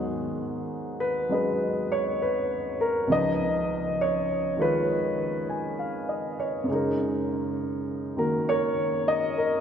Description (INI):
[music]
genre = jazz ballad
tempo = 67 BPM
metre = 4/4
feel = swing 66% on 8ths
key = G# minor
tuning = A4 = 440 Hz
[part]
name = warm baby grand piano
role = solo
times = 0.0-9.6 s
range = C#2 to G#5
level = -24 LUFS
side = equal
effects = none
[sound]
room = wet cathedral reverb, RT60 4.5 s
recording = recorded in a church or concert hall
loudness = -24 LUFS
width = side -8 dB against mid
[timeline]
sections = 0.0-9.6 A section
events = none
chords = 0.0 G#m7; 3.1 C#7; 6.7 F#69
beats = 0.40 1.30 2.20 | 3.09 3.99 4.89 5.78 | 6.68 7.58 8.47 9.37